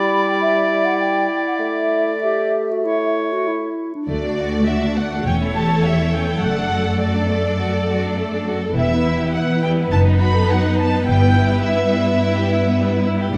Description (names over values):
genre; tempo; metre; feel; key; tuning
quick classical-period movement for symphony orchestra; 103 BPM; 4/4; rubato; D major; A4 = 440 Hz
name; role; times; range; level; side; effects
bright clarinet; second line; 0.0-4.1 s; D4 to G4; -26 LUFS; equal; none
clear oboe; second line; 0.0-3.7 s; C#5 to D5; -25 LUFS; equal; none
mellow hollow flute section; second line; 0.0-3.5 s; E5 to B5; -24 LUFS; equal; none
mellow bassoon; accompaniment; 0.0-3.7 s; G3 to A3; -26 LUFS; equal; none
dark studio violin section; melody; 4.1-13.0 s; D5 to B5; -27 LUFS; equal; none
rich studio violin section; second line; 4.1-13.4 s; G3 to D5; -27 LUFS; equal; none
rich studio viola section; accompaniment; 4.1-13.4 s; A3 to A4; -24 LUFS; equal; none
warm studio cello section; bass; 4.1-13.3 s; D2 to G2; -22 LUFS; equal; none
warm studio double bass section; bass; 4.1-11.6 s; E1 to D2; -25 LUFS; equal; none
room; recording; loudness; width
moderate scoring stage reverb, RT60 1.8 s; none; -18 LUFS; mono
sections
0.0-4.1 A section; 4.1-13.4 B section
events
none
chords
0.0 Em7/G; 1.6 Asus4; 4.1 D; 5.3 A7/E; 6.4 D/F#; 8.8 Em; 9.9 B7/F#; 11.1 Em/G